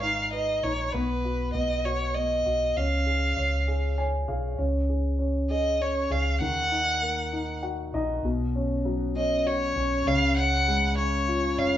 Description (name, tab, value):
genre	six-eight pop ballad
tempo	66 BPM (dotted quarters)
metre	6/8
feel	straight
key	unclear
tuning	A4 = 440 Hz
part	warm violin	melody	0.0-11.8 s	B4 to F#5	-26 LUFS	equal	none
part	dark upright piano	accompaniment	0.0-11.8 s	B2 to G#5	-29 LUFS	left 1 dB	none
part	hollow-body short-scale fingered electric bass	bass	0.0-11.8 s	E#1 to D#2	-29 LUFS	equal	none
room	wet large studio reverb, RT60 0.9 s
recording	band playing live in one room, nothing above 7.5 kHz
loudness	-24 LUFS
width	side -11 dB against mid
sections	0.0-4.6 A section; 4.6-11.8 B section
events	upright piano fill 3.7-4.6, 7.3-8.2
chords	0.0 G#m; 0.9 B; 2.8 C#; 4.6 C#5; 6.4 D#m; 8.2 Bsus2; 10.1 C#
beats	0.01 | 0.93 1.84 | 2.76 3.67 | 4.58 5.50 | 6.41 7.32 | 8.24 9.15 | 10.06 10.97